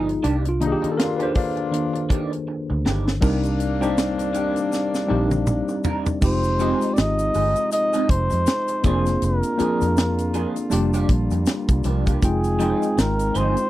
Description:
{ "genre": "lush 1970s-style soul", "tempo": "80 BPM", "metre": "4/4", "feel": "swing 58% on 16ths", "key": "F dorian", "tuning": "A4 = 441 Hz", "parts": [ { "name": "mellow tine electric piano", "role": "accompaniment", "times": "0.0-13.7 s", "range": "Eb3 to G5", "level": "-24 LUFS", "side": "left 1 dB", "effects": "medium stereo tremolo" }, { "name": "electric guitar through a small old amp", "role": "riff", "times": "0.0-13.6 s", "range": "Eb3 to Bb4", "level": "-30 LUFS", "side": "right 5 dB", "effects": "phaser" }, { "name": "vintage muted fingered electric bass", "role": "bass", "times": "0.0-13.5 s", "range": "F1 to F2", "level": "-24 LUFS", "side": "equal", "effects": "none" }, { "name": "tight funk drum kit", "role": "drums", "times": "0.1-13.7 s", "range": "crash cymbal, hi-hat, kick drum, snare drum, toms", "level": "-22 LUFS", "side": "equal", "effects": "none" }, { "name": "mellow horn section", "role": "stabs", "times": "0.6-5.8 s", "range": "G3 to F4", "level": "-28 LUFS", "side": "left 5 dB", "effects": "none" }, { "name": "mellow French horn section", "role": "sustained chords", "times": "3.2-13.7 s", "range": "C3 to D5", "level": "-33 LUFS", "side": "right 1 dB", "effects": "none" }, { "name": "tube shaker", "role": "percussion", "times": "3.2-13.7 s", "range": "none", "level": "-42 LUFS", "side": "left 11 dB", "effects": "none" }, { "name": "breathy flugelhorn", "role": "melody", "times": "6.2-13.7 s", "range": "Ab4 to Eb5", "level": "-24 LUFS", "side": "equal", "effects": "none" } ], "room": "little or no reverb", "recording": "dry, close 1970s-style studio recording", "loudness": "-19 LUFS", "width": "side -15 dB against mid", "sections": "0.0-3.2 A section; 3.2-6.2 B section; 6.2-13.7 C section", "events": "tine electric piano solo 0.0-3.2; drum fill 2.5-3.2, 4.7-6.2", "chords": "0.2 Cm9; 6.2 Fm7; 8.8 Bb7/F; 10.7 Gm7/F; 12.2 Fm7", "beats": "| 0.23 0.98 1.73 2.48 | 3.23 3.97 4.72 5.47 | 6.22 6.97 7.72 8.47 | 9.22 9.97 10.72 11.47 | 12.22 12.97" }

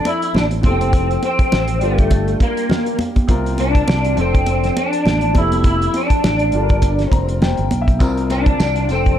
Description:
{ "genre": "lush 1970s-style soul", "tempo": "102 BPM", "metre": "4/4", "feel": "swing 58% on 16ths", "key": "F major", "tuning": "A4 = 440 Hz", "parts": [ { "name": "electric guitar through a small old amp", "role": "melody", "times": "0.0-9.2 s", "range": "A3 to E4", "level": "-19 LUFS", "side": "left 1 dB", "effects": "ensemble chorus, slapback echo" }, { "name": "warm baby grand piano", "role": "accompaniment", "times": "0.0-9.2 s", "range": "C3 to Bb5", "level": "-24 LUFS", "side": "left 2 dB", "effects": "none" }, { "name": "cloth-damped thuddy drum kit", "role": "drums", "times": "0.1-9.2 s", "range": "hi-hat, kick drum, snare drum", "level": "-18 LUFS", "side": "equal", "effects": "none" }, { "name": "congas", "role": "percussion", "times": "0.1-8.8 s", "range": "none", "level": "-26 LUFS", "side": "right 2 dB", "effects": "none" }, { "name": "fingered electric bass", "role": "bass", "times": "0.3-9.2 s", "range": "F1 to C2", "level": "-20 LUFS", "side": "equal", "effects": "none" }, { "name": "tambourine", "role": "percussion", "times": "8.0-9.0 s", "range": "none", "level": "-40 LUFS", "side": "right 9 dB", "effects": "none" } ], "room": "light reverb, studio ambience", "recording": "dark, warm production", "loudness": "-14 LUFS", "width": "side -10 dB against mid", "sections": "0.0-9.2 A section", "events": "grand piano fill 6.8-8.0", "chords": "0.0 F6; 0.6 Fmaj9; 1.8 Gm7; 3.3 C7sus4; 4.2 F6; 5.4 Dm11/F; 6.5 Gm7; 8.0 C7sus4", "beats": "0.34 | 0.93 1.52 2.11 2.70 | 3.29 3.88 4.47 5.06 | 5.65 6.24 6.83 7.42 | 8.01 8.60 9.19" }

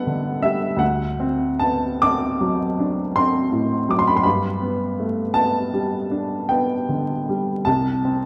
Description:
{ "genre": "classical, romantic nocturne for solo piano", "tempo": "46-56 BPM (dotted quarters)", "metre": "9/8", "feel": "rubato", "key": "G major", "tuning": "A4 = 440 Hz", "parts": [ { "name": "clear upright piano", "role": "solo", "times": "0.0-8.3 s", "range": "C2 to D6", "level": "-21 LUFS", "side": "equal", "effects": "none" } ], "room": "wet concert hall reverb, RT60 2.0 s", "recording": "vinyl crackle", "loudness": "-21 LUFS", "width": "mono", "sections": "0.0-8.3 A section", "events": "none", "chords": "0.0 G; 0.8 D7; 4.2 G; 7.7 N.C.", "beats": "| 0.81 2.05 3.15 | 4.25 5.34 6.49 | 7.66" }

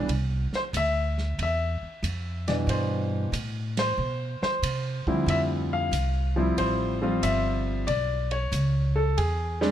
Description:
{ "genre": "jazz piano trio", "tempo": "92 BPM", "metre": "4/4", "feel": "swing 67% on 8ths", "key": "C major", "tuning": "A4 = 440 Hz", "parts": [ { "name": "warm concert grand piano", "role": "melody", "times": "0.0-9.7 s", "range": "D2 to F5", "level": "-27 LUFS", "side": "left 1 dB", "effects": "plate reverb" }, { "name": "upright bass", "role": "bass", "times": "0.0-9.7 s", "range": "G1 to C3", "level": "-27 LUFS", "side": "equal", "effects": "none" }, { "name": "open jazz drum kit", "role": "drums", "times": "0.1-9.7 s", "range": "hi-hat, kick drum, ride cymbal, snare drum", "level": "-37 LUFS", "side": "right 3 dB", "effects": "none" } ], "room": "light reverb", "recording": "none", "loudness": "-24 LUFS", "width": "side -11 dB against mid", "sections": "0.0-5.3 A section; 5.3-9.7 B section", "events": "band accent 3.7-4.0", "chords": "0.1 Cmaj7; 5.3 Dm11; 7.9 Bsus2; 9.2 E", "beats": "| 0.10 0.74 1.40 2.04 | 2.69 3.34 3.99 4.64 | 5.29 5.94 6.59 7.24 | 7.89 8.54 9.19" }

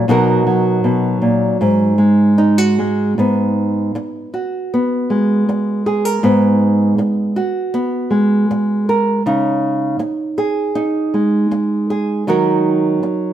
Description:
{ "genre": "folk, solo fingerstyle acoustic guitar", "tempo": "79 BPM", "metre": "4/4", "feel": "rubato", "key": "G# minor", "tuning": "A4 = 441 Hz", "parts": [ { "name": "nylon-string guitar", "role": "solo", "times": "0.0-13.3 s", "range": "G#2 to A#4", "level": "-14 LUFS", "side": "right 1 dB", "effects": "none" } ], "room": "moderate stone room reverb, RT60 1.1 s", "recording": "band playing live in one room", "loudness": "-13 LUFS", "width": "side -11 dB against mid", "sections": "0.0-3.2 A section; 3.2-13.3 B section", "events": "none", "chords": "0.1 Bmaj7; 1.6 G#5; 3.2 G#m7; 9.3 C#sus2; 12.3 D#m", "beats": "| 0.07 0.83 1.60 2.38 | 3.17 3.96 4.73 5.48 | 6.24 7.00 7.75 8.50 | 9.25 10.00 10.75 11.51 | 12.27 13.03" }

